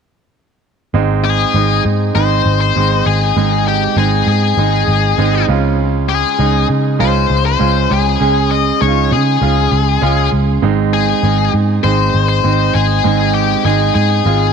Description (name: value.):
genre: pop.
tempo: 99 BPM.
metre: 4/4.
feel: straight.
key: Ab major.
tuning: A4 = 435 Hz.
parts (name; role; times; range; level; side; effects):
clear concert grand piano; accompaniment; 0.9-14.5 s; Ab2 to Ab4; -16 LUFS; right 12 dB; none.
vintage muted picked electric bass; bass; 0.9-14.5 s; Ab1 to Db3; -15 LUFS; left 1 dB; none.
high-gain lead guitar; melody; 1.2-14.5 s; G4 to Eb5; -16 LUFS; left 12 dB; distortion.
room: light reverb, small room ambience.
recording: 1960s-style stereo with parts hard left and right.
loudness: -11 LUFS.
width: side -6 dB against mid.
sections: 0.9-14.5 A section.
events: none.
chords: 0.9 Ab; 5.5 Db; 10.6 Ab.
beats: | 0.94 1.55 2.15 2.76 | 3.37 3.97 4.58 5.18 | 5.79 6.40 7.00 7.61 | 8.21 8.82 9.42 10.03 | 10.63 11.24 11.84 12.45 | 13.05 13.65 14.26.